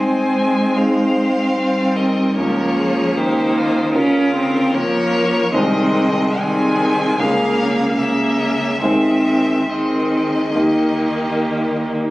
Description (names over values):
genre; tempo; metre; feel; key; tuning
classical, slow romantic movement for piano quintet; 67-78 BPM; 4/4; rubato; Ab major; A4 = 443 Hz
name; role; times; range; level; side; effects
rich violin; melody; 0.0-11.8 s; Bb4 to Ab5; -23 LUFS; left 2 dB; none
rich cello; second line; 0.0-12.0 s; Db3 to Ab3; -21 LUFS; right 1 dB; none
warm violin; second line; 0.0-12.1 s; F4 to C5; -25 LUFS; left 2 dB; none
clear concert grand piano; accompaniment; 0.0-12.1 s; C2 to Eb5; -21 LUFS; equal; none
rich viola; accompaniment; 0.0-12.0 s; Bb3 to Db4; -19 LUFS; equal; none
room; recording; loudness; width
moderate recital hall reverb, RT60 1.3 s; recorded on a phone in the room, studio reverb; -15 LUFS; side -18 dB against mid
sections
0.0-12.1 A section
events
none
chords
0.0 Ab; 2.4 Bbm/Db; 5.5 Ab/C; 7.2 Bbm7b5/Db; 8.8 Ab/Eb; 10.6 Eb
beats
0.77 1.56 | 2.38 3.17 3.95 4.75 | 5.55 6.41 7.20 7.99 | 8.83 9.71 10.56 11.41